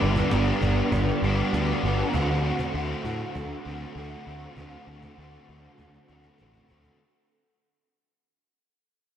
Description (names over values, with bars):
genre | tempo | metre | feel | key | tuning
rock, shoegaze and dream pop | 99 BPM | 4/4 | straight | unclear | A4 = 439 Hz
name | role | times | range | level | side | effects
crunchy overdriven guitar | riff | 0.0-7.0 s | G2 to G4 | -29 LUFS | left 4 dB | ensemble chorus
direct-recorded clean electric guitar | riff | 0.0-7.0 s | D3 to F#4 | -30 LUFS | right 7 dB | reverse reverb
fuzz picked electric bass | bass | 0.0-6.9 s | G1 to A2 | -28 LUFS | equal | overdrive
cajon | drums | 0.2-7.0 s | none | -35 LUFS | equal | none
room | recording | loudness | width
moderate lush hall reverb, RT60 2.7 s | dreamy mix soaked in reverb | -23 LUFS | side -10 dB against mid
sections
0.0-7.0 A section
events
fade-out 0.0-7.0; drum fill 5.8-7.0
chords
0.0 Gmaj7; 2.1 D7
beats
0.32 0.93 1.54 | 2.14 2.75 3.36 3.97 | 4.57 5.18 5.79 6.40